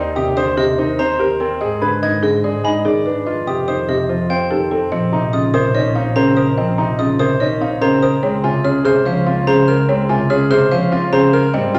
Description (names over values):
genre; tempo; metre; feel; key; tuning
classical, minimalist pattern music; 145 BPM; 4/4; straight; F dorian, Bb minor from 4.9 s; A4 = 440 Hz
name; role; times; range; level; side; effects
folk marimba with medium mallets; melody; 0.0-11.8 s; G4 to Cb6; -22 LUFS; equal; none
bright concert grand piano; arpeggios; 0.0-11.8 s; C4 to Eb5; -22 LUFS; equal; none
warm double bass; bass; 0.0-11.8 s; Bb1 to Ab2; -26 LUFS; equal; none
dark concert grand piano; accompaniment; 0.2-11.8 s; C3 to Eb4; -21 LUFS; equal; none
xylophone with wooden mallets; arpeggios; 0.2-11.6 s; Eb5 to Ab6; -28 LUFS; equal; none
room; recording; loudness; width
wet recital hall reverb, RT60 1.6 s; none; -16 LUFS; mono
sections
0.0-4.9 A section; 4.9-11.8 B section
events
none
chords
0.0 Ebmaj7; 1.6 Abm; 3.3 F7; 4.9 Bbmadd9; 8.2 Db6